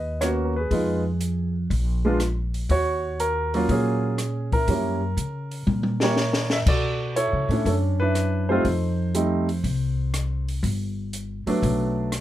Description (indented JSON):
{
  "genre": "jazz piano trio",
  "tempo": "121 BPM",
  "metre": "4/4",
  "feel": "swing 69% on 8ths",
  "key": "unclear",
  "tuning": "A4 = 442 Hz",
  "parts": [
    { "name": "warm baby grand piano", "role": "melody", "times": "0.0-12.1 s", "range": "Gb3 to Fb5", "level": "-24 LUFS", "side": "right 1 dB", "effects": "none" },
    { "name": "upright bass", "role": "bass", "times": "0.0-12.2 s", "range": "G1 to Db3", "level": "-25 LUFS", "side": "equal", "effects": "none" },
    { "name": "open jazz drum kit", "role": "drums", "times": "0.2-12.2 s", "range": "crash cymbal, hi-hat, kick drum, rim click, snare drum, toms", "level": "-27 LUFS", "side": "left 2 dB", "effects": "none" }
  ],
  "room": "little or no reverb",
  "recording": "none",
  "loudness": "-21 LUFS",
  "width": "side -13 dB against mid",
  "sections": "0.0-6.7 A section; 6.7-12.2 B section",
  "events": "drum fill 5.7-6.7",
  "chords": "0.0 Abm11 (rootless); 0.7 Fm7b5; 1.7 N.C.; 2.7 Ebm7; 4.7 Gb7b9; 6.7 Bm11; 8.6 F7; 10.6 Gmaj7",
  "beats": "0.21 | 0.71 1.20 1.70 2.20 | 2.69 3.19 3.69 4.18 | 4.68 5.18 5.67 6.17 | 6.67 7.16 7.66 8.15 | 8.65 9.14 9.64 10.14 | 10.63 11.13 11.62 12.12"
}